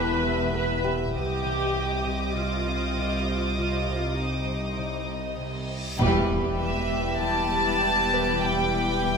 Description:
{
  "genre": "cinematic, suspense film score",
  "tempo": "99 BPM",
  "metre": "4/4",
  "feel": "straight",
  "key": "unclear",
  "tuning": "A4 = 440 Hz",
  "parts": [
    { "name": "warm studio violin section", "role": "melody", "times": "0.0-9.2 s", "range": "Eb5 to A5", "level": "-29 LUFS", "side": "equal", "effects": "none" },
    { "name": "warm studio viola section", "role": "accompaniment", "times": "0.0-9.2 s", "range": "E3 to B4", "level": "-30 LUFS", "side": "equal", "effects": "none" },
    { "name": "ethereal airy pad", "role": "sustained chords", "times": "0.0-9.2 s", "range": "G4 to G5", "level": "-34 LUFS", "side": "equal", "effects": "ensemble chorus, built-in reverb" },
    { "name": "concert harp", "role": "riff", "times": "0.0-9.2 s", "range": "E2 to C4", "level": "-33 LUFS", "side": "left 4 dB", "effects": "none" },
    { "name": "dark studio double bass section", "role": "bass", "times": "0.0-9.2 s", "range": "E1 to C2", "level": "-34 LUFS", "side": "right 2 dB", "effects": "none" },
    { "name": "warm studio cello section", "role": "bass", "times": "0.0-9.2 s", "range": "C2 to E2", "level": "-33 LUFS", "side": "right 1 dB", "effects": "none" },
    { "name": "punchy sub bass", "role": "drone", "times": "0.0-9.2 s", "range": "E1 to C2", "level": "-35 LUFS", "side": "equal", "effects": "none" },
    { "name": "music box", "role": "texture", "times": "0.0-9.2 s", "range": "G4 to A5", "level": "-37 LUFS", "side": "right 1 dB", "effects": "none" },
    { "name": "warm studio violin section", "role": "texture", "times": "1.2-9.2 s", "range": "G5 to Eb6", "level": "-36 LUFS", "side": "equal", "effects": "none" },
    { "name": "reverse cymbal and impact", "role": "sound effects", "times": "5.6-8.4 s", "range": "none", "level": "-34 LUFS", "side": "equal", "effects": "none" },
    { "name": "warm studio violin section", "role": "second line", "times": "6.0-9.2 s", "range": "G4 to B4", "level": "-30 LUFS", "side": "left 1 dB", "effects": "none" }
  ],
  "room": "wet stone room reverb, RT60 1.3 s",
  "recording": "none",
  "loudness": "-23 LUFS",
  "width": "side -5 dB against mid",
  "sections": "0.0-6.0 A section; 6.0-9.2 A section",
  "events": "reverse cymbal 5.6-6.0; band accent 6.0-6.6; impact 6.0-8.4",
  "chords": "0.0 Em; 1.2 Cmadd9; 6.0 Em",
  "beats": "0.55 | 1.15 1.76 2.36 2.97 | 3.58 4.18 4.79 5.39 | 6.00 6.61 7.21 7.82 | 8.42 9.03"
}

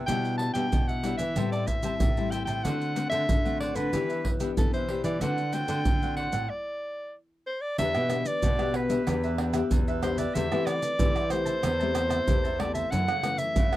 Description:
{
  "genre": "samba and choro",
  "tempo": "94 BPM",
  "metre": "4/4",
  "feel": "straight",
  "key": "E minor from 7.8 s",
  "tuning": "A4 = 440 Hz",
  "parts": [
    { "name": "cavaquinho", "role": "accompaniment", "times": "0.0-13.8 s", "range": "D4 to A5", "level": "-37 LUFS", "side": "right 4 dB", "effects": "none" },
    { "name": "nylon-string guitar", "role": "accompaniment", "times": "0.0-13.8 s", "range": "F#2 to G4", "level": "-33 LUFS", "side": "left 6 dB", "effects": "none" },
    { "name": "nylon-string guitar", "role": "bass", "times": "0.0-13.8 s", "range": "E2 to E3", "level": "-31 LUFS", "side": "equal", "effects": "none" },
    { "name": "warm soprano saxophone", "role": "melody", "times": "0.1-13.8 s", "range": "A4 to A5", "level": "-30 LUFS", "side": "equal", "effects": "none" },
    { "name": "maracas, surdo, pandeiro and tamborim", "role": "percussion", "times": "0.1-13.8 s", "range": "none", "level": "-29 LUFS", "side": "right 1 dB", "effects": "none" }
  ],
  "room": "little or no reverb",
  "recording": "dry, close 1970s-style studio recording",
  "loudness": "-25 LUFS",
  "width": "side -14 dB against mid",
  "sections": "0.0-7.8 A section; 7.8-13.8 B section",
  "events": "stop 6.5-7.8",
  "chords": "0.1 Em7/B; 1.4 Am7; 2.6 D7; 3.9 Em7; 5.2 D7; 7.8 Em7; 10.4 Am7/E; 12.9 F#m7",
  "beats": "| 0.08 0.72 1.37 2.01 | 2.65 3.29 3.94 4.58 | 5.22 5.86 6.50 7.15 | 7.79 8.43 9.07 9.71 | 10.36 11.00 11.64 12.28 | 12.92 13.56"
}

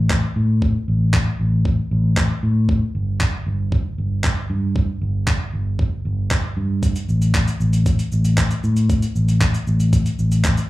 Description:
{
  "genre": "dance-pop",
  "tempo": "116 BPM",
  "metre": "4/4",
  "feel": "straight",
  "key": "unclear",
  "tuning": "A4 = 440 Hz",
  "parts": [
    { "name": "fingered electric bass", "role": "bass", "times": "0.0-10.6 s", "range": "G1 to A2", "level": "-18 LUFS", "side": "equal", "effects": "sidechain pumping" },
    { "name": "dusty soul sampler-style drum kit", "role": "drums", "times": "0.1-10.7 s", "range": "handclaps, hi-hat, kick drum, shaker", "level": "-20 LUFS", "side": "equal", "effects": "overdrive" }
  ],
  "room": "little or no reverb",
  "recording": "live gig heard through the venue's PA, club reverb",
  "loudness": "-17 LUFS",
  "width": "side -17 dB against mid",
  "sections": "0.0-10.7 A section",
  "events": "none",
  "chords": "none",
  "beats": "0.10 | 0.62 1.14 1.66 2.17 | 2.69 3.21 3.73 4.24 | 4.76 5.28 5.79 6.31 | 6.83 7.34 7.86 8.38 | 8.90 9.41 9.93 10.45"
}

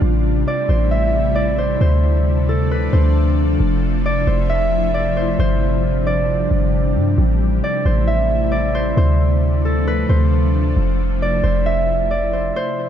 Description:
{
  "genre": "hip hop",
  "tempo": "134 BPM",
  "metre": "4/4",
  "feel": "half-time",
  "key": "A minor",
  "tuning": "A4 = 441 Hz",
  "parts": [
    { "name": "Celtic harp", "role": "melody", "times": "0.0-12.9 s", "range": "A4 to E5", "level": "-21 LUFS", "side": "equal", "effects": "ping-pong delay" },
    { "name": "ethereal airy pad", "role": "sustained chords", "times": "0.0-12.5 s", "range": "C3 to E4", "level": "-21 LUFS", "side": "equal", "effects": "ensemble chorus, built-in reverb" },
    { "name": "warm 808-style bass", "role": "bass", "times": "0.0-12.5 s", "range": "F1 to G2", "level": "-17 LUFS", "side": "equal", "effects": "none" }
  ],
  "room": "light reverb",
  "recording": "none",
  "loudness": "-15 LUFS",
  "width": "side -9 dB against mid",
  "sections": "0.0-12.9 A section",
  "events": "stop 12.6-12.9",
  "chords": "0.0 Am7; 1.8 Dm7; 3.6 Fmaj7; 5.4 G7sus4; 7.2 Am7; 9.0 Dm7; 10.8 Fmaj7",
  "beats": "| 0.02 0.47 0.91 1.36 | 1.81 2.26 2.71 3.15 | 3.60 4.05 4.50 4.94 | 5.39 5.84 6.29 6.74 | 7.18 7.63 8.08 8.53 | 8.97 9.42 9.87 10.32 | 10.76 11.21 11.66 12.11 | 12.55"
}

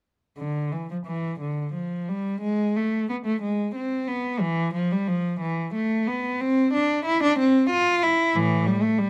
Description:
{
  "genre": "classical, baroque-style suite movement for unaccompanied cello",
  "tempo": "60 BPM (dotted quarters)",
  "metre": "6/8",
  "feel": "rubato",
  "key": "A minor",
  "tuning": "A4 = 441 Hz",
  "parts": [
    { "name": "warm cello", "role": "solo", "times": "0.4-9.1 s", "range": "A2 to F4", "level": "-24 LUFS", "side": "equal", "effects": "none" }
  ],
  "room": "light reverb",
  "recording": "none",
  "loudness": "-24 LUFS",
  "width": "mono",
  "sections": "0.4-9.1 A section",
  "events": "none",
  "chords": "none",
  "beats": "| 0.39 1.40 | 2.41 3.41 | 4.41 5.41 | 6.41 7.39 | 8.36"
}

